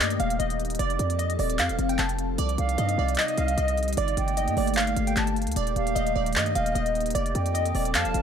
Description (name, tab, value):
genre	hip hop, trap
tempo	151 BPM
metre	4/4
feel	half-time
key	unclear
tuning	A4 = 440 Hz
part	glassy wavetable pluck	melody	0.0-8.2 s	D5 to A5	-29 LUFS	equal	chorus, digital delay
part	glassy FM pad	sustained chords	0.0-8.2 s	C3 to A4	-31 LUFS	left 3 dB	ensemble chorus, built-in reverb, phaser
part	hard-hitting 808-style bass	bass	0.0-8.2 s	Eb1 to G2	-27 LUFS	equal	none
part	trap drum kit	drums	0.0-8.2 s	handclaps, hi-hat	-29 LUFS	equal	none
part	breathy silver concert flute	second line	2.6-8.2 s	Eb5 to A5	-31 LUFS	right 6 dB	digital delay
room	light reverb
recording	none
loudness	-23 LUFS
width	side -8 dB against mid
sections	0.0-8.2 A section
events	none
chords	0.0 Eb; 0.8 F; 2.4 Cm; 4.0 Gmadd9; 5.6 Eb; 7.2 F